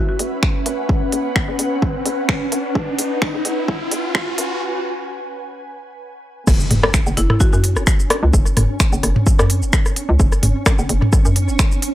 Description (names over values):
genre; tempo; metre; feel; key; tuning
minimal techno; 129 BPM; 4/4; swing 54% on 16ths; unclear; A4 = 441 Hz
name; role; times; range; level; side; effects
buzzing marimba with hard mallets; melody; 0.0-0.2, 7.2-7.6 s; E4 to F#4; -27 LUFS; left 1 dB; low-pass filter, tape echo
riser and impact; sound effects; 0.7-8.3 s; none; -26 LUFS; equal; none
ethereal airy pad; texture; 0.0-4.6 s; C#4 to F#5; -24 LUFS; equal; ensemble chorus, built-in reverb, sidechain pumping
hollow knocking FM bass; bass; 0.2-11.6 s; F#1 to F#2; -18 LUFS; equal; sidechain pumping, high-pass filter
minimal click drum kit; drums; 0.2-11.9 s; crash cymbal, finger snaps, hi-hat, shaker; -22 LUFS; equal; overdrive, studio reverb
electronic kick drum; drums; 0.4-11.7 s; none; -16 LUFS; equal; overdrive, studio reverb
booming analog drum machine; percussion; 6.5-11.7 s; cowbell, rim click, toms, woodblock; -19 LUFS; equal; studio reverb, tape echo
flickering grainy texture; texture; 7.2-11.9 s; C#4; -28 LUFS; right 2 dB; built-in reverb, sidechain pumping
room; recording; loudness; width
digital ambience; dry, gritty hardware recording, transformer saturation, high-pass filter; -15 LUFS; side -14 dB against mid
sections
0.0-6.5 A section; 6.5-11.9 B section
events
build-up 0.0-6.5; riser 0.7-4.6; break 4.6-6.5; drop 6.5-11.9; impact 6.5-8.3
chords
0.0 F#sus4; 6.5 F#5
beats
0.43 | 0.89 1.36 1.82 2.29 | 2.75 3.22 3.68 4.15 | 4.61 5.08 5.54 6.01 | 6.47 6.94 7.41 7.87 | 8.34 8.80 9.27 9.73 | 10.20 10.66 11.13 11.59